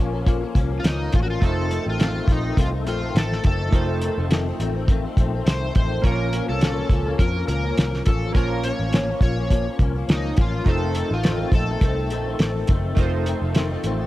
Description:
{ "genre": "indie pop, bedroom pop", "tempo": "104 BPM", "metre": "4/4", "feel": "swing 55% on 16ths", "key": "Bb harmonic minor", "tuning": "A4 = 440 Hz", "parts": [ { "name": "chorused retro synth keys", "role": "accompaniment", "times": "0.0-14.1 s", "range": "A3 to Db5", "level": "-31 LUFS", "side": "right 7 dB", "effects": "cassette tape" }, { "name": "direct-recorded clean electric guitar", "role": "accompaniment", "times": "0.0-14.1 s", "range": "F2 to Db4", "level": "-28 LUFS", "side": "left 6 dB", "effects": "ensemble chorus, vibrato effect, cassette tape" }, { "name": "vintage muted picked electric bass", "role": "bass", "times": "0.0-14.1 s", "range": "F1 to F2", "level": "-25 LUFS", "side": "equal", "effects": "tube saturation" }, { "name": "cloth-damped thuddy drum kit", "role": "drums", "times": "0.3-14.0 s", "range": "hi-hat, kick drum, snare drum", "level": "-20 LUFS", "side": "equal", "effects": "cassette tape" }, { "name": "overdriven slide guitar", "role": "melody", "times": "0.8-14.1 s", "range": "Eb4 to Db5", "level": "-29 LUFS", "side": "equal", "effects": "analog chorus, analog delay" } ], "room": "small room ambience", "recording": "home recording on cassette", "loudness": "-19 LUFS", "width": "side -16 dB against mid", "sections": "0.0-14.1 A section", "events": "none", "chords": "0.0 Bbm; 1.4 F7; 6.0 Bbm; 10.7 F7" }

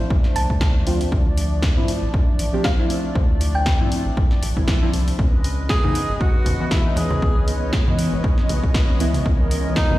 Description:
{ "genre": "deep house", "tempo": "118 BPM", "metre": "4/4", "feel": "swing 56% on 16ths", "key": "unclear", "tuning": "A4 = 440 Hz", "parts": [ { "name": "hollow soft pad", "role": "sustained chords", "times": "0.0-10.0 s", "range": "F3 to D#5", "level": "-30 LUFS", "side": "left 1 dB", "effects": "chorus, sidechain pumping" }, { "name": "rubbery square bass", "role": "bass", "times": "0.0-10.0 s", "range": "G#1 to G2", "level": "-22 LUFS", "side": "equal", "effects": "tube saturation, sidechain pumping" }, { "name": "granular cloud pad", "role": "texture", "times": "0.0-10.0 s", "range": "E3 to D#5", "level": "-31 LUFS", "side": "equal", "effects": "built-in reverb, sidechain pumping" }, { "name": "electronic kick drum", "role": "drums", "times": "0.1-9.9 s", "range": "none", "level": "-19 LUFS", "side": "equal", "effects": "none" }, { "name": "punchy analog drum machine", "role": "drums", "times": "0.2-9.9 s", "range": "hi-hat, snare drum", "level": "-29 LUFS", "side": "equal", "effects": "none" }, { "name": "thumb-piano-like synth pluck", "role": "melody", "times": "0.4-4.1 s", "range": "F5 to A5", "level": "-29 LUFS", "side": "equal", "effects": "chorus, analog delay" }, { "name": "deep mellow chord stab", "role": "stabs", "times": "0.9-10.0 s", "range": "E3 to G4", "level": "-27 LUFS", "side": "equal", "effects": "chorus, phaser, cassette tape, sidechain pumping, analog delay" }, { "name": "breathy tenor saxophone", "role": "melody", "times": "5.7-10.0 s", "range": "D#4 to G#4", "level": "-26 LUFS", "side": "right 1 dB", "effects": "analog delay" }, { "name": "congas", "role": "percussion", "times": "5.8-10.0 s", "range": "none", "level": "-26 LUFS", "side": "right 1 dB", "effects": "none" } ], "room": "light reverb", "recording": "played on a big sound system in a bare room, stone room reverb", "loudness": "-17 LUFS", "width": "side -16 dB against mid", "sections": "0.0-10.0 A section", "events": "none", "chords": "0.0 Dm9; 5.2 C#m9" }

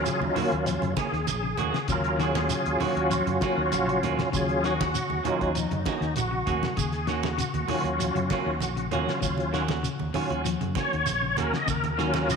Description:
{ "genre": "afrobeat", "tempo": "98 BPM", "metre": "4/4", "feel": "straight", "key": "Eb minor", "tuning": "A4 = 439 Hz", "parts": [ { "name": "bright tonewheel organ", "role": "accompaniment", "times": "0.0-12.4 s", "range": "Gb3 to Eb5", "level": "-27 LUFS", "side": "equal", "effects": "slow rotary speaker, chorus vibrato" }, { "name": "fingered electric bass", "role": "bass", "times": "0.0-12.3 s", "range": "Bb1 to Gb2", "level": "-31 LUFS", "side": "left 1 dB", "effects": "none" }, { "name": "semi-hollow electric guitar", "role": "arpeggios", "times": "0.1-12.4 s", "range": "Db3 to F3", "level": "-34 LUFS", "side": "left 9 dB", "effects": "none" }, { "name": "cloth-damped thuddy drum kit", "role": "drums", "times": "0.1-12.4 s", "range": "hi-hat, kick drum, snare drum", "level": "-35 LUFS", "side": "left 4 dB", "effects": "none" }, { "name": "shekere", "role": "percussion", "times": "0.1-12.4 s", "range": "none", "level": "-37 LUFS", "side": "right 7 dB", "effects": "none" }, { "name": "congas", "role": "percussion", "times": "0.2-12.3 s", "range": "none", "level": "-35 LUFS", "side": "right 8 dB", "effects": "none" }, { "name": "semi-hollow electric guitar", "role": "stabs", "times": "0.4-12.3 s", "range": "Bb3 to Gb4", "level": "-33 LUFS", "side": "right 8 dB", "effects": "none" } ], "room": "wet echo chamber reverb, RT60 2.3 s", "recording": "1960s-style stereo with parts hard left and right", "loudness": "-24 LUFS", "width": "side -5 dB against mid", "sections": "0.0-12.4 A section", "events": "tonewheel organ solo 0.0-12.4", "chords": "0.0 Ebm7" }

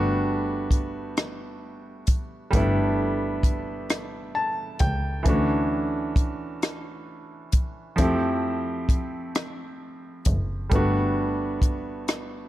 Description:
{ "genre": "slow six-eight R&B", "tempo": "44 BPM (dotted quarters)", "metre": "6/8", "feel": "straight", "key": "G lydian", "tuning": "A4 = 440 Hz", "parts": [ { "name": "clear grand piano", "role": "accompaniment", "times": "0.0-12.5 s", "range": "E3 to A5", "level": "-27 LUFS", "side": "equal", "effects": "none" }, { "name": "rich double bass", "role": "bass", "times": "0.0-12.5 s", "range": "F#1 to F2", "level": "-29 LUFS", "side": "equal", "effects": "none" }, { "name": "compact cocktail drum kit", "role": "drums", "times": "0.7-12.3 s", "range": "hi-hat, kick drum, rim click", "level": "-23 LUFS", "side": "equal", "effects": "none" } ], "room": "light reverb", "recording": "dark, warm production", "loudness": "-23 LUFS", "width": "side -14 dB against mid", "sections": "0.0-12.5 A section", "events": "grand piano fill 3.9-5.3", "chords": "0.0 Gmaj9; 5.3 Dmaj9; 8.0 Fmaj9; 10.7 Gmaj9" }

